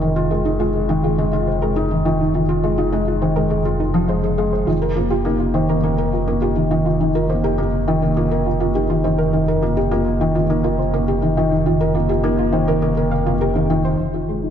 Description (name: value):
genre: piano and strings electronica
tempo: 103 BPM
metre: 4/4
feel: straight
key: unclear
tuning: A4 = 445 Hz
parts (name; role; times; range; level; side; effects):
- felt-muted upright piano; riff; 0.0-14.5 s; Eb3 to Bb4; -18 LUFS; equal; low-pass filter, digital delay
- warm sub bass; bass; 0.0-14.5 s; F1; -23 LUFS; equal; none
- soft round pluck; arpeggios; 0.3-13.9 s; C4 to F5; -25 LUFS; right 2 dB; wide subtle chorus, digital delay
room: moderate lush hall reverb, RT60 2.1 s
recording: dark, warm production, nothing above 7.9 kHz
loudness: -16 LUFS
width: side -8 dB against mid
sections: 0.0-14.0 A section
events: none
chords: 0.0 Fm7; 4.7 Eb/F; 14.0 Fm7